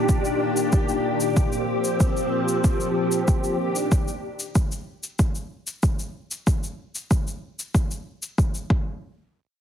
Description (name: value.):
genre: sunset chillout.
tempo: 94 BPM.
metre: 4/4.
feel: straight.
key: unclear.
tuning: A4 = 440 Hz.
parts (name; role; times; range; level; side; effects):
soft string machine; sustained chords; 0.0-3.9 s; Bb2 to G4; -23 LUFS; left 1 dB; phaser, ensemble chorus.
electronic kick drum; drums; 0.1-8.8 s; none; -21 LUFS; equal; overdrive.
shaker; drums; 0.1-8.7 s; none; -33 LUFS; left 3 dB; overdrive.
room: light reverb, digital ambience.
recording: heavily compressed radio sound, multiband compression.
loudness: -21 LUFS.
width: side -9 dB against mid.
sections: 0.0-9.0 A section.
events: none.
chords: 0.0 Ebmaj7/Bb; 1.4 C7sus4/Bb; 3.6 Ebmaj7/Bb; 6.5 N.C..